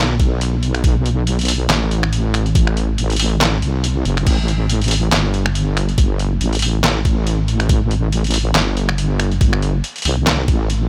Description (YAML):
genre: deep dubstep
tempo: 140 BPM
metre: 4/4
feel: swing 56% on 16ths, half-time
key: unclear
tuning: A4 = 437 Hz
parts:
  - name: wobble bass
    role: bass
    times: 0.0-10.9 s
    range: F#1 to C2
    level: -19 LUFS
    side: equal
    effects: chorus
  - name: electronic kick drum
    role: drums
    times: 0.2-10.6 s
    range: none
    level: -17 LUFS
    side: equal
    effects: none
  - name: trip hop sampler-style drum kit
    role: drums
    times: 0.2-10.8 s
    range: crash cymbal, finger snaps, handclaps, hi-hat, snare drum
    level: -23 LUFS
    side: equal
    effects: none
room: little or no reverb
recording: none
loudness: -17 LUFS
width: mono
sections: 0.0-10.9 A section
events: kick drops out 3.4-4.3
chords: none